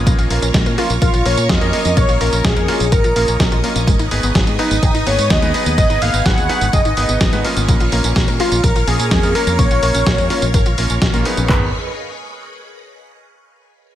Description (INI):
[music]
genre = italo disco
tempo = 126 BPM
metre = 4/4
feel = straight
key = G# dorian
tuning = A4 = 440 Hz
[part]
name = phased string machine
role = sustained chords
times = 0.0-11.7 s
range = G#4 to D#6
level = -25 LUFS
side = equal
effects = ensemble chorus, phaser
[part]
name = analog pluck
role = arpeggios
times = 0.0-11.7 s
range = A#2 to A#4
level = -27 LUFS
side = left 4 dB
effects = chorus, tape echo
[part]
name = bright electric grand piano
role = stabs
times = 0.0-11.7 s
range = A#3 to B4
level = -23 LUFS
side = right 1 dB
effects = none
[part]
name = fingered electric bass with an envelope filter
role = bass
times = 0.0-11.7 s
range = F#1 to A#2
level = -19 LUFS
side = equal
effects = none
[part]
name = clean 12-bit digital drum machine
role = drums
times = 0.1-11.5 s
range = hi-hat, snare drum, tambourine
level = -21 LUFS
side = equal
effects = gated reverb
[part]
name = punchy analog drum machine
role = drums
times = 0.1-11.6 s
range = handclaps, kick drum, toms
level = -17 LUFS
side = equal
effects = none
[part]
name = wide unison lead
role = melody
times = 0.8-11.7 s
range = D#4 to F#5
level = -20 LUFS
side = equal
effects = analog chorus, tape echo
[sound]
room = light reverb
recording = none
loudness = -13 LUFS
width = side -12 dB against mid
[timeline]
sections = 0.0-11.5 A section; 11.5-13.4 B section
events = none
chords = 0.1 A#m; 3.9 G#m; 7.7 A#m; 11.5 G#m